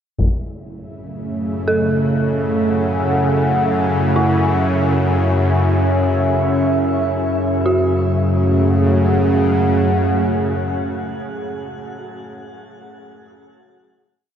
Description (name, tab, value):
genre	dark ambient drone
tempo	free time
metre	none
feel	none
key	F# minor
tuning	A4 = 439 Hz
part	deep dark ambient pad	sustained chords	1.1-12.0 s	A3 to G#5	-21 LUFS	right 1 dB	chorus, built-in reverb, shimmer reverb
part	bowed-like drone	drone	1.1-11.7 s	F#2 to C#3	-18 LUFS	equal	built-in reverb
part	taiko ensemble	percussion	0.2-0.4 s	none	-20 LUFS	left 1 dB	low-pass filter on perc
part	bubbling stepped-filter texture	texture	0.5-7.7 s	E4 to E5	-30 LUFS	equal	chorus, built-in reverb, shimmer reverb
part	dark detuned synth bell	arpeggios	1.7-13.9 s	E4 to A4	-24 LUFS	right 1 dB	chorus, diffuse ambient delay, shimmer reverb
room	wet huge ambient reverb, RT60 8.3 s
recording	nothing above 10.7 kHz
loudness	-15 LUFS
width	side -8 dB against mid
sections	0.2-7.7 A section; 7.7-11.4 final chord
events	fade-in on synth texture 0.2-7.7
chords	0.2 F#madd9